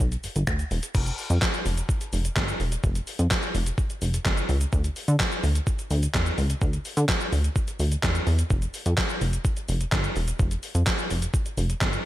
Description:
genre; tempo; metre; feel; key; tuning
dance-pop; 127 BPM; 4/4; straight; unclear; A4 = 443 Hz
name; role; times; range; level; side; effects
plucky analog bass; bass; 0.0-12.0 s; E1 to D3; -24 LUFS; equal; sidechain pumping
gated 80s digital drum machine; drums; 0.0-12.0 s; crash cymbal, finger snaps, handclaps, hi-hat, kick drum, shaker, snare drum; -26 LUFS; equal; gated reverb, gated reverb snare, overdrive
room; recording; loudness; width
little or no reverb; none; -23 LUFS; side -15 dB against mid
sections
0.9-12.1 A section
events
none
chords
none

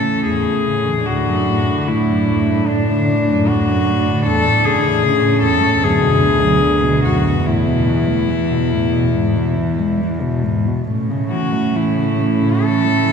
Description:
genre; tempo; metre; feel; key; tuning
classical, lyrical piece for cello ensemble; 66-78 BPM; 4/4; rubato; A major; A4 = 440 Hz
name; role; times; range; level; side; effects
rich cello; melody; 0.0-13.1 s; D4 to A4; -18 LUFS; left 6 dB; none
dark cello; second line; 0.0-13.1 s; B3 to D4; -22 LUFS; right 7 dB; none
dark cello; accompaniment; 0.0-13.1 s; D2 to A3; -20 LUFS; left 1 dB; none
warm cello; bass; 0.0-13.1 s; D2 to A2; -20 LUFS; right 1 dB; none
room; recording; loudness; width
wet church reverb, RT60 3.2 s; recorded in a church or concert hall; -14 LUFS; side -6 dB against mid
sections
0.0-13.1 A section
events
none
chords
0.0 A/E; 1.1 D; 4.3 A/E; 5.8 Bm/D; 7.5 Esus4; 9.2 E; 10.9 A

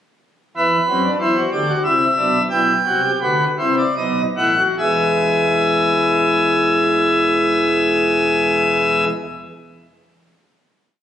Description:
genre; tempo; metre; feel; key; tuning
classical, baroque-style 3-part fugue for pipe organ; 71-96 BPM; 3/4; straight; unclear; A4 = 444 Hz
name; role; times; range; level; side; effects
pipe organ, principal chorus; solo; 0.6-9.1 s; E1 to G5; -14 LUFS; equal; none
room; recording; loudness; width
wet recital hall reverb, RT60 1.5 s; recorded on a phone in the room, studio reverb; -14 LUFS; side -10 dB against mid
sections
0.6-4.8 exposition; 4.8-9.9 final chord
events
slowing down 0.6-6.0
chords
0.6 Em; 1.8 Cmaj9; 2.5 Em/B; 4.0 B7; 4.8 E

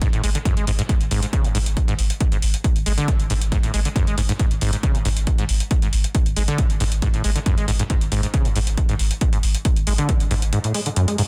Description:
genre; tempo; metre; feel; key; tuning
driving peak-time techno; 137 BPM; 4/4; straight; unclear; A4 = 440 Hz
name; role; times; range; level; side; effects
acid bass, saw; riff; 0.0-11.2 s; F#2 to G#3; -26 LUFS; equal; lush chorus, sidechain pumping, digital delay
electronic hi-hat; drums; 0.0-11.3 s; none; -31 LUFS; equal; sidechain pumping on hats
electronic kick drum; drums; 0.0-10.2 s; none; -23 LUFS; equal; none
warm sub bass; bass; 0.1-10.5 s; G#1; -26 LUFS; equal; overdrive, sidechain pumping, low-pass filter
room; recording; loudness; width
little or no reverb; dense, heavily limited modern master; -20 LUFS; mono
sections
0.0-11.3 A section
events
kick drops out 10.5-11.3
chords
none

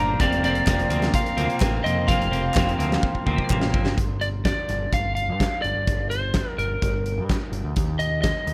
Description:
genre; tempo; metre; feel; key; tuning
indie rock; 127 BPM; 4/4; straight; G minor; A4 = 440 Hz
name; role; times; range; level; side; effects
lightly driven lead guitar; melody; 0.0-8.5 s; Bb4 to Bb5; -29 LUFS; equal; analog delay
glockenspiel with hard plastic mallets; second line; 0.0-3.5 s; Bb5 to F6; -40 LUFS; equal; none
string machine, cellos; sustained chords; 0.0-4.0 s; C4 to Bb5; -41 LUFS; equal; none
crunchy overdriven guitar; riff; 0.0-4.0 s; Bb2 to D4; -32 LUFS; equal; lush chorus
overdriven electric guitar; riff; 0.0-4.0 s; F2 to D4; -29 LUFS; equal; none
growling picked electric bass; bass; 0.0-8.5 s; F1 to G2; -29 LUFS; equal; overdrive
big rock drum kit; drums; 0.2-8.5 s; hi-hat, kick drum, snare drum; -28 LUFS; equal; none
group handclap; percussion; 0.7-3.6 s; none; -37 LUFS; equal; none
room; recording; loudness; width
light reverb; none; -23 LUFS; mono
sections
0.0-4.0 A section; 4.0-8.5 B section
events
drum fill 3.0-4.0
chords
0.2 Fsus4; 4.0 G5; 7.8 N.C.

